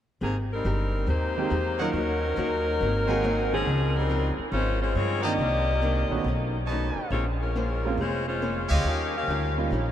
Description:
jazz, big band swing; 139 BPM; 4/4; swing 66% on 8ths; Ab major; A4 = 436 Hz
bright saxophone section; melody; 0.2-9.6 s; Eb3 to F5; -28 LUFS; left 2 dB
archtop guitar, miked and amplified; accompaniment; 0.2-9.9 s; Ab2 to C5; -34 LUFS; left 2 dB
upright bass; bass; 0.2-9.9 s; F1 to G2; -28 LUFS; equal
clear baby grand piano; accompaniment; 1.4-9.7 s; Eb3 to Ab4; -34 LUFS; right 5 dB
clear trumpet section; stabs; 1.8-9.2 s; G4 to Bb5; -36 LUFS; right 1 dB
moderate huge ambient reverb, RT60 8.3 s; in a vast, echoing space; -24 LUFS; side -10 dB against mid
0.2-9.9 A section
0.2 Abmaj9; 1.9 Ebm7; 2.8 Ab9; 3.7 Dbmaj7; 5.4 Cm9; 6.3 B9; 7.1 Bbm9; 8.8 Eb9

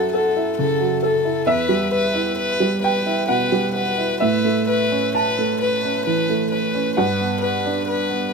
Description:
neoclassical piano and strings; 66 BPM; 3/4; rubato; E dorian; A4 = 440 Hz
warm violin; melody; 0.0-8.3 s; A4 to B4; -22 LUFS; left 4 dB
clear upright piano; accompaniment; 0.0-8.3 s; E2 to A5; -20 LUFS; right 2 dB
little or no reverb; close, detailed microphones; -18 LUFS; side -4 dB against mid
0.0-8.3 A section
0.0 F#m7; 1.5 Em; 4.2 Aadd9; 7.0 Gmaj7

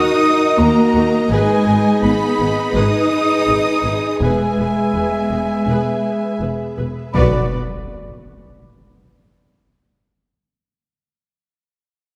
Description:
cinematic; 83 BPM; 4/4; straight; A4 = 441 Hz
dark symphonic violin section; melody; 0.0-7.6 s; B4 to D#6; -28 LUFS; equal
rich symphonic violin section; second line; 0.0-7.5 s; B4 to D#6; -32 LUFS; equal
silver concert flute; second line; 0.0-7.5 s; G#5 to D#6; -27 LUFS; equal
rich symphonic viola section; accompaniment; 0.0-7.6 s; F#4 to D5; -29 LUFS; equal
clear symphonic string section; sustained chords; 0.0-7.6 s; B3 to E5; -28 LUFS; equal
mellow French horn section; sustained chords; 0.0-7.5 s; F#4 to B4; -26 LUFS; equal
warm trumpet; stabs; 0.0-7.5 s; D5 to E5; -28 LUFS; equal
rich symphonic cello section; bass; 0.0-7.6 s; G#3 to D#4; -21 LUFS; equal
clear symphonic double bass section; bass; 0.6-7.5 s; E1 to D#2; -24 LUFS; equal
impact; sound effects; 7.1-10.0 s; -27 LUFS; equal
wet concert hall reverb, RT60 2.4 s; -17 LUFS; mono
0.0-7.1 A section; 7.1-10.0 B section
impact 7.1-10.0
0.0 D#m; 1.3 G#m; 4.2 E; 7.1 Bm

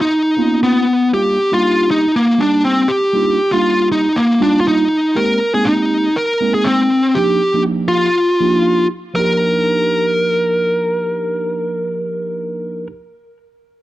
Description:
jazz; 120 BPM; 4/4; swing 54% on 16ths; Eb major; A4 = 442 Hz
bluesy overdriven lead guitar; melody; 0.0-12.9 s; Bb3 to Bb4; -14 LUFS; equal; distortion
mellow tine electric piano; accompaniment; 0.0-12.9 s; F3 to Ab4; -19 LUFS; right 2 dB; phaser
moderate club reverb, RT60 0.7 s; dark, warm production; -13 LUFS; side -15 dB against mid
0.0-9.2 A section; 9.2-13.2 B section
0.0 Bmaj9; 1.1 Ebmaj9; 5.2 Abmaj9; 7.2 Ebmaj9

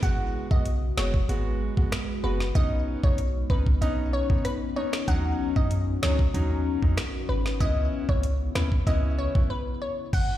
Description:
dancehall; 95 BPM; 4/4; straight; A4 = 441 Hz
glassy wavetable pluck; melody; 0.0-10.4 s; B4 to F#5; -33 LUFS; left 2 dB; chorus, ping-pong delay
warm baby grand piano; accompaniment; 0.0-9.5 s; F#3 to F#4; -33 LUFS; right 2 dB; sidechain pumping
deep dark ambient pad; sustained chords; 0.0-10.1 s; C#3 to B4; -34 LUFS; left 5 dB; chorus, built-in reverb, sidechain pumping
clean 808-style bass; bass; 0.0-10.4 s; F#1 to F#2; -27 LUFS; equal
island pop drum kit; drums; 0.0-10.3 s; crash cymbal, finger snaps, hi-hat, kick drum, rim click, snare drum; -25 LUFS; equal
little or no reverb; played on a big sound system in a bare room, large studio reverb; -23 LUFS; side -13 dB against mid
0.0-10.1 A section
break 9.5-10.1
0.0 G#m7; 2.6 Badd9; 5.1 D#m7; 7.6 C#m7

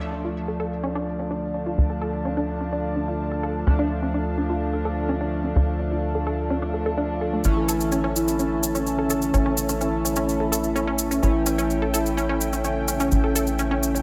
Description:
melodic techno; 127 BPM; 4/4; straight; D harmonic minor; A4 = 440 Hz
lush unison pad; sustained chords; 0.0-14.0 s; C#4 to A5; -35 LUFS; equal; chorus
sync-sweep polysynth; stabs; 0.0-14.0 s; E3 to D4; -31 LUFS; equal; chorus, delay
tight sequencer bass; bass; 0.0-14.0 s; A1 to D2; -29 LUFS; equal
analog drone; drone; 1.3-14.0 s; D3 to A3; -39 LUFS; equal
unison pluck; arpeggios; 0.1-14.0 s; A3 to A4; -31 LUFS; equal; delay
soft octave-layered synth lead; melody; 7.4-14.0 s; C#4 to E4; -28 LUFS; equal; chorus, delay
cabasa; percussion; 7.4-14.0 s; -31 LUFS; equal
light reverb; -24 LUFS; mono
0.0-14.0 A section
filter sweep on synth pluck 0.0-14.0; filter sweep on analog synth pad 0.0-14.0
0.0 Dm; 7.4 A

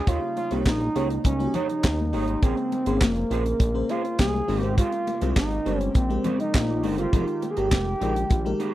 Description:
early-eighties boogie funk; 102 BPM; 4/4; straight; A4 = 435 Hz
expressive synth lead; melody; 0.0-8.7 s; Bb3 to Ab4; -27 LUFS; right 2 dB; chorus
brassy analog pad; sustained chords; 0.0-8.7 s; Db3 to G4; -38 LUFS; equal
electric guitar through a small old amp; riff; 0.0-8.7 s; C4 to Eb5; -33 LUFS; right 7 dB; ensemble chorus
FM electric piano with soft pad layer; accompaniment; 0.1-8.7 s; Db3 to Db5; -31 LUFS; left 5 dB; chorus
chorused synth bass; bass; 0.1-8.5 s; F1 to Eb2; -27 LUFS; equal
tight funk drum kit; drums; 0.1-8.7 s; handclaps, hi-hat, kick drum, snare drum; -22 LUFS; equal
congas; percussion; 0.1-8.7 s; -35 LUFS; left 5 dB
little or no reverb; dry, close 1970s-style studio recording; -22 LUFS; side -14 dB against mid
0.1-8.7 A section
0.1 Eb7; 2.4 Bbm9; 4.5 Abmaj9; 7.1 Fm11

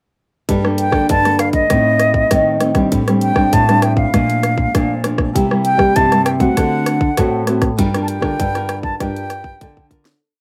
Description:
samba and choro; 99 BPM; 4/4; straight; G minor; A4 = 441 Hz
nylon-string guitar; accompaniment; 0.5-10.2 s; F2 to Bb4; -21 LUFS; equal
nylon-string guitar; bass; 0.5-10.1 s; G2 to G3; -21 LUFS; equal
garage drum kit; drums; 0.5-10.2 s; hi-hat, kick drum, rim click, snare drum; -22 LUFS; equal
concert flute; melody; 0.8-9.9 s; Eb5 to A5; -20 LUFS; equal
moderate studio ambience, RT60 0.5 s; -15 LUFS; mono
0.5-10.2 A section
fade-out 7.8-10.2; drum fill 9.6-10.2
0.5 Gmadd9; 1.7 Adim; 2.9 D7sus4/A; 4.1 Bbmaj7; 5.4 C7; 6.6 D7; 7.8 Gm7

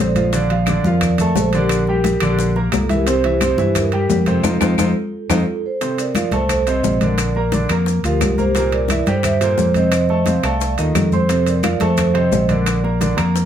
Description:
latin, salsa; 175 BPM; 4/4; straight; Bb major; A4 = 440 Hz
vibraphone with soft mallets; melody; 0.0-13.1 s; F4 to F5; -21 LUFS; moving between equal and right 6 dB; auto-pan
clear grand piano; accompaniment; 0.0-13.5 s; Bb2 to C6; -22 LUFS; right 1 dB
fingered electric bass; bass; 0.0-13.5 s; Bb1 to G2; -19 LUFS; left 1 dB
bongos; percussion; 0.2-13.5 s; -28 LUFS; left 6 dB
congas; percussion; 0.2-13.5 s; -23 LUFS; left 2 dB
maracas; percussion; 0.2-13.5 s; -32 LUFS; left 7 dB
timbales; percussion; 0.2-13.4 s; -27 LUFS; right 4 dB
claves; percussion; 0.7-13.4 s; -30 LUFS; left 8 dB
wet studio reverb, RT60 0.6 s; heard from further back in the room; -15 LUFS; side -9 dB against mid
0.0-5.8 A section; 5.8-13.5 B section
band accent 4.4-5.8; drum fill 4.8-5.8
0.3 Bbmaj7; 1.7 Bb69; 3.1 C7; 4.4 F7; 5.8 F; 7.2 Bb; 8.6 C7; 9.9 F7; 11.3 F; 12.7 Bb

